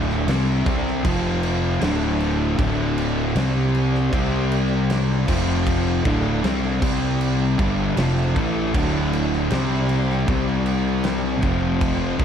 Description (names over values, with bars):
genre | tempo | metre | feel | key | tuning
stoner and doom metal | 78 BPM | 4/4 | straight | D minor | A4 = 440 Hz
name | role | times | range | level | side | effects
tonewheel organ | sustained chords | 0.0-12.2 s | C4 to G5 | -33 LUFS | right 1 dB | slow rotary speaker, chorus vibrato
distorted electric guitar | riff | 0.0-12.2 s | D2 to C4 | -27 LUFS | equal | distortion
thick fuzz guitar | riff | 0.0-12.2 s | D2 to C4 | -24 LUFS | left 8 dB | distortion
thick fuzz guitar | riff | 0.0-12.2 s | D2 to C4 | -25 LUFS | right 7 dB | distortion
fuzz fingered electric bass | bass | 0.0-12.2 s | D1 to C2 | -26 LUFS | equal | overdrive
big rock drum kit | drums | 0.1-12.2 s | crash cymbal, kick drum, snare drum | -26 LUFS | right 1 dB | none
room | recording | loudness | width
small room ambience | none | -18 LUFS | side -8 dB against mid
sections
0.0-12.2 A section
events
none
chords
0.0 D5; 1.1 F5; 1.8 D5; 3.4 C5; 5.3 F5; 6.1 D5; 6.8 C5; 7.6 Dm; 9.5 C5; 11.4 F5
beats
0.28 1.05 1.82 | 2.59 3.36 4.13 4.90 | 5.67 6.44 7.21 7.98 | 8.74 9.51 10.28 11.05 | 11.82